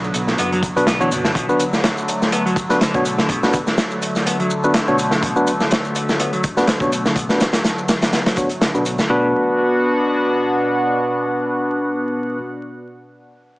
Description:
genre	breakbeat, breaks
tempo	124 BPM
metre	4/4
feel	swing 55% on 16ths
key	B minor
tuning	A4 = 436 Hz
part	phased analog pad	sustained chords	0.0-12.4 s	B2 to F#5	-22 LUFS	equal	phaser, chorus, sidechain pumping
part	hollow-body short-scale fingered electric bass	bass	0.0-1.3 s	F#1 to B1	-29 LUFS	equal	none
part	shaker	drums	0.0-9.1 s	none	-33 LUFS	left 1 dB	none
part	crunchy breakbeat drum kit	drums	0.1-9.1 s	hi-hat, kick drum, snare drum	-19 LUFS	equal	none
part	electric guitar at the edge of break-up	riff	0.4-9.3 s	B2 to B3	-26 LUFS	equal	low-pass filter, tape echo
part	barky tine electric piano	stabs	0.8-12.4 s	B3 to C#5	-20 LUFS	equal	low-pass filter, tape echo
room	moderate plate reverb, RT60 1.6 s, studio ambience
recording	heavily compressed radio sound, vinyl crackle, small speaker sound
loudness	-16 LUFS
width	side -21 dB against mid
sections	0.0-9.1 A section; 9.1-13.0 B section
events	filter sweep on clean electric guitar 0.0-9.1; filter sweep on tine electric piano 0.0-9.1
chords	0.0 Bm

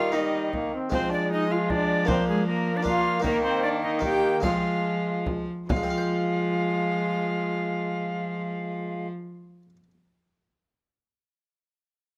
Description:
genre	classical, renaissance-style consort dance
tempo	137-156 BPM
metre	3/4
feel	straight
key	F dorian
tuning	A4 = 440 Hz
part	bright alto recorder	melody	0.0-9.1 s	Ab4 to G5	-32 LUFS	equal	none
part	warm viola	second line	0.0-9.1 s	Ab3 to G4	-33 LUFS	equal	none
part	bright trombone	accompaniment	0.0-9.1 s	G3 to C4	-34 LUFS	equal	none
part	harpsichord	accompaniment	0.0-9.9 s	Eb3 to C5	-36 LUFS	equal	none
part	rich cello	bass	0.0-9.1 s	Eb3 to F3	-32 LUFS	equal	none
part	frame drum	percussion	0.5-5.9 s	none	-33 LUFS	equal	none
room	light reverb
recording	close, detailed microphones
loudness	-26 LUFS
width	mono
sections	0.0-5.7 A section; 5.7-8.3 B section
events	slowing down 2.7-5.7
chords	0.0 Eb; 0.9 Fm; 2.1 Bb/F; 3.2 Eb; 4.4 Fm

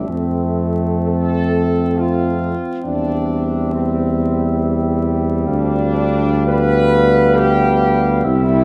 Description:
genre	classical, hymn-like piece for brass band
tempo	66 BPM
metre	3/4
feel	uneven beats, rubato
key	unclear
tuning	A4 = 436 Hz
part	mellow flugelhorn	melody	0.0-8.6 s	E5 to F5	-28 LUFS	equal	none
part	warm French horn section	second line	0.0-8.6 s	C4 to B4	-22 LUFS	equal	none
part	clear trombone	accompaniment	0.0-8.6 s	G3 to A3	-27 LUFS	equal	none
part	mellow tuba	bass	0.0-8.6 s	C2 to F2	-20 LUFS	equal	none
part	clear euphonium	accompaniment	0.1-8.6 s	B3 to C4	-25 LUFS	equal	none
room	moderate concert hall reverb, RT60 1.8 s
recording	dark, warm production, vinyl crackle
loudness	-17 LUFS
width	mono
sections	0.0-8.6 A section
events	none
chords	0.1 Fmaj7; 2.8 C/E; 5.5 G7/D

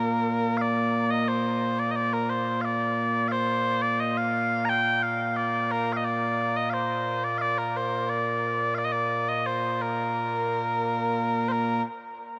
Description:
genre	scottish traditional, Scottish pipe music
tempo	88 BPM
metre	2/4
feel	straight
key	Bb major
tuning	A4 = 440 Hz
part	mellow small bagpipes	solo	0.0-11.8 s	Bb2 to Bb5	-26 LUFS	equal	none
room	moderate huge ambient reverb, RT60 8.3 s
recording	none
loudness	-26 LUFS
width	mono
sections	0.6-11.5 A section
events	none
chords	none

